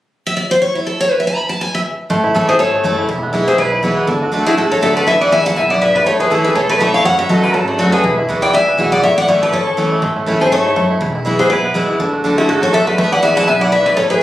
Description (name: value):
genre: bluegrass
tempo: 243 BPM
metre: 4/4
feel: swing 55% on 8ths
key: A major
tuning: A4 = 437 Hz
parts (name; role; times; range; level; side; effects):
- picked steel-string acoustic guitar; melody; 0.3-14.2 s; E4 to B5; -16 LUFS; left 1 dB; none
- bluegrass banjo; melody; 2.1-14.2 s; A3 to A4; -20 LUFS; right 2 dB; none
- picked steel-string acoustic guitar; accompaniment; 2.1-14.2 s; E2 to F#4; -18 LUFS; equal; none
- upright bass; bass; 2.1-14.2 s; E1 to E2; -25 LUFS; equal; none
- lap resonator guitar; second line; 2.5-14.2 s; D4 to F#5; -16 LUFS; left 1 dB; none
room: moderate studio reverb, RT60 0.6 s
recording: recorded on a phone in the room, studio reverb, compression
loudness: -12 LUFS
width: side -14 dB against mid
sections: 0.1-2.1 A section; 2.1-10.0 B section; 10.0-14.2 B section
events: none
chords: 0.1 N.C.; 2.1 A; 3.1 E; 4.1 D; 5.1 E; 6.1 A; 7.1 F#m; 8.0 Eadd9; 9.0 A; 11.0 E; 12.0 D; 13.0 E